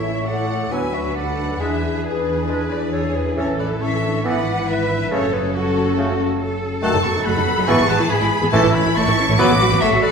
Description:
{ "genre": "quick classical-period movement for symphony orchestra", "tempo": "138 BPM", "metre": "4/4", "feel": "rubato", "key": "A major", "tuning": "A4 = 441 Hz", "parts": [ { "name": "rich studio violin section", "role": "melody", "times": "0.0-10.0 s", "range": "C#4 to C#5", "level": "-32 LUFS", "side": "left 3 dB", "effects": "none" }, { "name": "clear oboe", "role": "second line", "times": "0.0-10.1 s", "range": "F#4 to B5", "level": "-28 LUFS", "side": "right 2 dB", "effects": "none" }, { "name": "rich studio violin section", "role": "second line", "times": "0.0-10.1 s", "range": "A4 to D6", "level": "-25 LUFS", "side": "left 2 dB", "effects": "none" }, { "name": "silver concert flute", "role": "second line", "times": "0.0-10.1 s", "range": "A4 to D6", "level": "-27 LUFS", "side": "left 2 dB", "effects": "none" }, { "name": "rich studio viola section", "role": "accompaniment", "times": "0.0-10.0 s", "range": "E3 to E4", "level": "-25 LUFS", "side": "equal", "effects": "none" }, { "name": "mellow French horn section", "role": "sustained chords", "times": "0.0-9.5 s", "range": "E3 to E4", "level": "-27 LUFS", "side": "left 4 dB", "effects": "none" }, { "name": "dark trumpet", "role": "stabs", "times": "0.0-9.5 s", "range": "G#4 to C#5", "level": "-28 LUFS", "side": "right 1 dB", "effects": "none" }, { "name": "rich studio double bass section", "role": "bass", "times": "0.0-10.0 s", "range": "F#1 to E2", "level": "-25 LUFS", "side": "right 3 dB", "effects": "none" }, { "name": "warm studio cello section", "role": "bass", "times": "0.0-10.1 s", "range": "E4 to B4", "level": "-27 LUFS", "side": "right 2 dB", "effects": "none" }, { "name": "timpani", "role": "percussion", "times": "0.0-0.5, 8.5-10.0 s", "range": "A2", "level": "-26 LUFS", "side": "right 1 dB", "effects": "none" }, { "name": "warm clarinet", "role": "second line", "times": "0.7-9.5 s", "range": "A3 to D4", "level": "-28 LUFS", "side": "equal", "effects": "none" }, { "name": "warm bassoon", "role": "accompaniment", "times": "0.7-9.5 s", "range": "C#3 to G#3", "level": "-26 LUFS", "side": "right 2 dB", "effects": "none" } ], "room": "wet recital hall reverb, RT60 1.4 s", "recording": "heard from further back in the room", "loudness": "-16 LUFS", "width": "side -6 dB against mid", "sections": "0.0-10.1 A section", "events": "none", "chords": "0.0 A; 0.7 Bm/D; 1.6 E7; 3.4 A; 4.3 E/G#; 5.1 F#m; 6.8 B7/F#; 7.7 E/G#; 8.5 A; 9.4 Bm7/A" }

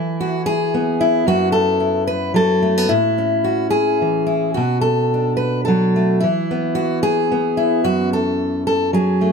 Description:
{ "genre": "folk, solo fingerstyle acoustic guitar", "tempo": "110 BPM", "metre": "3/4", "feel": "rubato", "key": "unclear", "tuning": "A4 = 441 Hz", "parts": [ { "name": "fingerpicked steel-string acoustic guitar", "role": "solo", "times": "0.0-9.3 s", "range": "F#2 to B4", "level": "-16 LUFS", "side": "equal", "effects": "none" } ], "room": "light reverb", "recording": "close, detailed microphones", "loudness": "-15 LUFS", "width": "side -5 dB against mid", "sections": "0.0-9.3 A section", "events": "none", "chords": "0.0 E; 1.3 F#7sus4; 2.9 A; 4.6 Bm7; 6.2 E; 7.9 F#7sus4" }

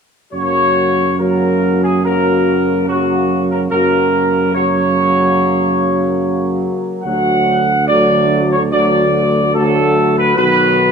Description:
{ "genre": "classical", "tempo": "72 BPM", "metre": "4/4", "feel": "straight", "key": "F# major", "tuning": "A4 = 439 Hz", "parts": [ { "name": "dark trumpet section", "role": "melody", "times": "0.3-10.9 s", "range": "F#4 to F#5", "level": "-15 LUFS", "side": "equal", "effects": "none" }, { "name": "bright trombone section", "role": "sustained chords", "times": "0.3-10.9 s", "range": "C#3 to F#3", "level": "-22 LUFS", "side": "right 4 dB", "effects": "none" }, { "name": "mellow French horn section", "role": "sustained chords", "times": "0.3-10.9 s", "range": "A3 to F#4", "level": "-19 LUFS", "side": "left 5 dB", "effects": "none" }, { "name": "warm tuba", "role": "bass", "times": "0.3-10.9 s", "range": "B1 to F#2", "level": "-18 LUFS", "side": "right 4 dB", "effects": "none" } ], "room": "moderate recital hall reverb, RT60 1.7 s", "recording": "none", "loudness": "-12 LUFS", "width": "side -6 dB against mid", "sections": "0.3-10.9 A section", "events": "none", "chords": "0.3 F#; 7.0 D; 10.4 B" }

